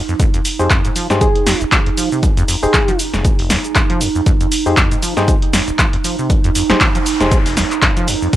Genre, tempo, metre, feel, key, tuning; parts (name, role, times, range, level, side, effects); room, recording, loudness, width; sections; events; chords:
acid house; 118 BPM; 4/4; swing 56% on 16ths; F minor; A4 = 441 Hz
acid bass, saw; riff; 0.0-8.4 s; F1 to F3; -21 LUFS; equal; tube saturation, lush chorus, sidechain pumping
warbly tape-like pad; texture; 0.0-8.4 s; Eb4; -22 LUFS; right 7 dB; chorus, built-in reverb, sidechain pumping
punchy analog drum machine; drums; 0.1-8.4 s; crash cymbal, handclaps, hi-hat, shaker, snare drum; -17 LUFS; equal
electronic kick drum; drums; 0.2-8.4 s; -16 LUFS; equal
percussive organ stab; stabs; 0.6-7.4 s; Eb4 to C5; -20 LUFS; left 2 dB; chorus, analog delay
soft struck synth lead; melody; 1.2-3.0 s; Ab4; -22 LUFS; left 1 dB; chorus, tape echo
noise sweep; sound effects; 6.6-8.3 s; -26 LUFS; right 1 dB
little or no reverb; dry, gritty hardware recording, cassette tape; -12 LUFS; side -13 dB against mid
0.0-8.4 A section
noise sweep 6.6-8.3
0.0 Fm7